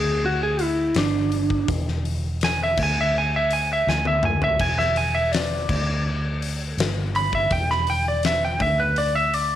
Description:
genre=blues rock power trio and southern rock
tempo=82 BPM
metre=4/4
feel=straight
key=unclear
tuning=A4 = 440 Hz
part: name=lightly driven lead guitar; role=melody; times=0.0-9.6 s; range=D4 to B5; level=-22 LUFS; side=right 1 dB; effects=none
part: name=vintage muted fingered electric bass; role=bass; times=0.0-9.6 s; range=E1 to D2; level=-25 LUFS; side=equal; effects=none
part: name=huge arena drum kit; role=drums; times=0.6-9.5 s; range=crash cymbal, hi-hat, kick drum, snare drum, toms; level=-27 LUFS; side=left 4 dB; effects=none
room=light reverb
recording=1960s-style stereo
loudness=-20 LUFS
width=side -11 dB against mid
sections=0.0-9.6 A section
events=lead electric guitar solo 0.0-9.6; drum fill 3.9-4.6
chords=0.0 Dsus2; 1.0 G5; 1.7 N.C.; 2.8 E7/D; 4.6 E7; 5.7 N.C.; 6.8 G6; 7.5 Em; 8.6 Dsus2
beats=0.23 0.96 | 1.69 2.41 3.14 3.87 | 4.60 5.33 6.05 6.78 | 7.51 8.24 8.97

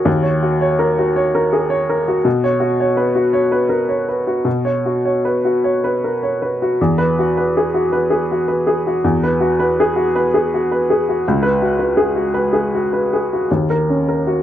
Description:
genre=neoclassical minimalist piano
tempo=76-85 BPM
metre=3/4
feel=rubato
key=unclear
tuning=A4 = 440 Hz
part: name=clear upright piano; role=solo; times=0.0-14.4 s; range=Db2 to Db5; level=-14 LUFS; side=equal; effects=none
room=light reverb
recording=dry, close 1970s-style studio recording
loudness=-14 LUFS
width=side -11 dB against mid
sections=0.0-14.4 A section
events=none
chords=0.0 Ebm7; 2.3 Bsus2; 6.8 Eadd9; 11.2 Db7sus4; 13.5 Ebm7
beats=| 0.07 0.81 1.53 | 2.25 2.96 3.69 | 4.45 5.23 6.00 | 6.78 7.54 8.28 | 9.03 9.77 10.50 | 11.24 11.95 12.70 | 13.48 14.25

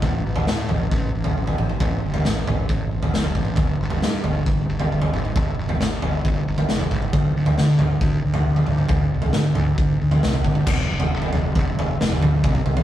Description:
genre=quiet-loud alternative rock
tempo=135 BPM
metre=4/4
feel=straight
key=unclear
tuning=A4 = 442 Hz
part: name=fuzz fingered electric bass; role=bass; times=0.0-12.8 s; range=F1 to D3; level=-22 LUFS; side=equal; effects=overdrive
part: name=raw garage drum kit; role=drums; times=0.0-12.8 s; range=crash cymbal, kick drum, snare drum, toms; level=-21 LUFS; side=equal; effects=none
room=moderate studio reverb, RT60 0.5 s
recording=rough rehearsal-room recording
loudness=-18 LUFS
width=side -12 dB against mid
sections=0.0-10.7 A section; 10.7-12.8 B section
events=none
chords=none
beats=| 0.04 0.48 0.93 1.37 | 1.81 2.25 2.70 3.14 | 3.58 4.03 4.47 4.91 | 5.36 5.80 6.24 6.68 | 7.13 7.57 8.02 8.46 | 8.90 9.35 9.79 10.23 | 10.67 11.12 11.56 12.00 | 12.45

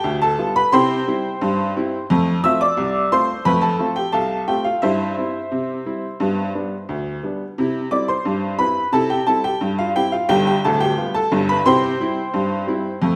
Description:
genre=ragtime piano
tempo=88 BPM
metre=2/4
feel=straight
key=C major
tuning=A4 = 438 Hz
part: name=clear upright piano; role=solo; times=0.0-13.2 s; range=D1 to E6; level=-20 LUFS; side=equal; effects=none
room=wet recital hall reverb, RT60 1.4 s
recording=recorded in a church or concert hall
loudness=-20 LUFS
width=mono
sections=0.0-13.2 A section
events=none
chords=0.0 G7; 0.7 C; 2.1 F; 4.8 C/G; 6.2 G; 7.6 C; 10.3 G7; 11.6 C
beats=0.06 | 0.74 1.42 | 2.10 2.77 | 3.46 4.14 | 4.82 5.51 | 6.20 6.88 | 7.57 8.25 | 8.93 9.61 | 10.29 10.97 | 11.65 12.33 | 13.01

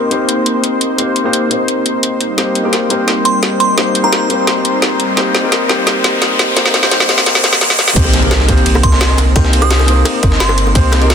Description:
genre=liquid drum and bass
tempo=172 BPM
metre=4/4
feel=straight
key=C minor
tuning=A4 = 440 Hz
part: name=dark concert grand piano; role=accompaniment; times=0.0-11.1 s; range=Bb3 to C5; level=-16 LUFS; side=left 2 dB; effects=dub echo
part: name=lush unison pad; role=sustained chords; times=0.0-11.1 s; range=G3 to C5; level=-20 LUFS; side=equal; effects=chorus, sidechain pumping
part: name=warm sub bass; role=bass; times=0.0-11.1 s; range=G1 to G2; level=-12 LUFS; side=equal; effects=high-pass filter
part: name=drum and bass drum kit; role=drums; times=0.1-11.1 s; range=crash cymbal, hi-hat, snare drum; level=-15 LUFS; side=equal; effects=high-pass filter on hats, high-pass filter on snare, high-pass filter on cymbals, high-pass filter on room
part: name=riser and impact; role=sound effects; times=4.0-9.4 s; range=none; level=-19 LUFS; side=left 1 dB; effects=none
part: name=glassy synth bell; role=melody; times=3.3-4.3, 8.8-10.7 s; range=Bb5 to Eb6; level=-20 LUFS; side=right 2 dB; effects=chorus, dub echo
part: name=breakbeat sampler-style drum kit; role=drums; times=8.0-11.1 s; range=hi-hat, ride cymbal, snare drum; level=-19 LUFS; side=right 1 dB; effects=high-pass filter on snare, high-pass filter on cymbals, high-pass filter on hats, high-pass filter on room
part: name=electronic kick drum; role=drums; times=8.0-10.8 s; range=none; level=-13 LUFS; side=equal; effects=none
part: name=bongos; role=percussion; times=8.0-11.1 s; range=none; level=-24 LUFS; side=left 1 dB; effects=none
room=light reverb, digital ambience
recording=dense, heavily limited modern master, high-pass filter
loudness=-10 LUFS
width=side -7 dB against mid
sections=0.0-8.0 A section; 8.0-11.1 B section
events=build-up 0.0-8.0; filter sweep 0.0-8.0; drum fill 2.4-8.0; riser 4.0-8.0; drop 8.0-11.1; impact 8.0-9.4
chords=0.0 Cm7; 2.2 Eb6; 8.0 Cm7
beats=0.29 0.64 | 0.99 1.33 1.68 2.03 | 2.38 2.73 3.08 3.43 | 3.78 4.12 4.47 4.82 | 5.17 5.52 5.87 6.22 | 6.57 6.92 7.26 7.61 | 7.96 8.31 8.66 9.01 | 9.36 9.71 10.05 10.40 | 10.75 11.10

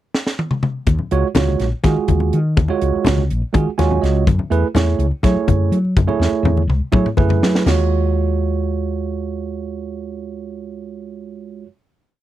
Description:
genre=electric jazz fusion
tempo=247 BPM (eighths)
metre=7/8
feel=straight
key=unclear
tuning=A4 = 440 Hz
part: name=crisp fusion drum kit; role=drums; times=0.1-7.8 s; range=hi-hat, kick drum, snare drum, splash cymbal, toms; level=-19 LUFS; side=left 1 dB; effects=none
part: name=woody fretless electric bass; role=bass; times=0.9-11.6 s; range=Bb1 to Gb3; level=-18 LUFS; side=left 1 dB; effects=none
part: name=congas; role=percussion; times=0.9-7.9 s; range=none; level=-23 LUFS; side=left 6 dB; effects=none
part: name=tine electric piano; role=accompaniment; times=1.1-11.7 s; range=Ab3 to Ab5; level=-21 LUFS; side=right 7 dB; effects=none
room=little or no reverb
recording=dry, close 1970s-style studio recording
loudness=-15 LUFS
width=side -13 dB against mid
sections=0.0-0.9 pickup bar; 0.9-7.7 groove; 7.7-11.1 final chord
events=drum fill 0.1-0.9, 6.2-7.7; tine electric piano fill 3.5-4.3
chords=0.0 N.C.; 0.9 Ebm11; 4.3 Gbm11; 7.7 Ebm11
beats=0.13 0.38 0.62 | 0.86 1.11 1.35 1.59 1.84 2.08 2.32 | 2.57 2.81 3.05 3.29 3.54 3.78 4.02 | 4.27 4.51 4.75 4.99 5.24 5.48 5.72 | 5.96 6.21 6.45 6.69 6.93 7.18 7.42 | 7.66 7.90 8.15 8.39 8.63 8.87 9.12 | 9.36 9.60 9.85 10.09 10.33 10.57 10.82

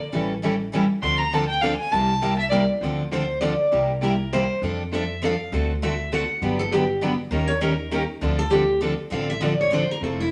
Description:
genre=acoustic string swing (jazz manouche)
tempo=200 BPM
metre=3/4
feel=swing 57% on 8ths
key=D minor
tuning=A4 = 440 Hz
part: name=warm violin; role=second line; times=0.0-2.6 s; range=D5 to C6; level=-25 LUFS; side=equal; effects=none
part: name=picked steel-string acoustic guitar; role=accompaniment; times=0.1-10.2 s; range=C3 to Bb4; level=-28 LUFS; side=equal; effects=none
part: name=picked steel-string acoustic guitar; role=accompaniment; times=0.1-9.8 s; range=C3 to Bb4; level=-31 LUFS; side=equal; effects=none
part: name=upright bass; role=bass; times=0.1-10.3 s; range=F1 to F2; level=-33 LUFS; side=equal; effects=none
part: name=picked steel-string acoustic guitar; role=melody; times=3.1-10.3 s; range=E4 to F#5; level=-26 LUFS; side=equal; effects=none
room=wet studio reverb, RT60 0.8 s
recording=none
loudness=-23 LUFS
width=mono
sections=0.0-2.8 A section; 2.8-10.0 A section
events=violin solo 0.0-2.8; steel-string acoustic guitar solo 2.8-10.3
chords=0.1 A7; 1.0 Dm7; 1.9 C7; 2.8 Dm7; 3.7 C7; 4.6 F6; 5.5 D7; 6.4 Gmaj7; 7.3 Eb7; 8.2 Dm7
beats=| 0.13 0.43 0.73 | 1.03 1.33 1.63 | 1.93 2.23 2.52 | 2.83 3.12 3.42 | 3.72 4.02 4.32 | 4.62 4.92 5.22 | 5.52 5.82 6.12 | 6.42 6.72 7.02 | 7.32 7.62 7.92 | 8.22 8.52 8.82 | 9.12 9.42 9.72 | 10.02

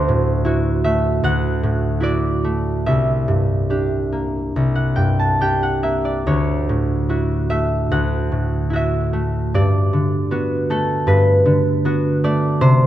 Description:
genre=classical, solo harp piece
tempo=69-82 BPM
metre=4/4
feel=rubato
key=D mixolydian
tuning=A4 = 440 Hz
part: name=concert harp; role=solo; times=0.0-12.9 s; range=C2 to A5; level=-16 LUFS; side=equal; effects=none
room=moderate concert hall reverb, RT60 2.0 s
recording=close, detailed microphones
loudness=-16 LUFS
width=side -12 dB against mid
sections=0.0-12.9 A section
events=none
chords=0.0 Dadd9; 2.9 C9; 6.3 Dmaj9; 9.5 Gmaj9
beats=0.45 1.23 2.02 | 2.87 3.71 4.56 5.41 | 6.27 7.10 7.92 8.74 | 9.54 10.32 11.08 11.85 | 12.61

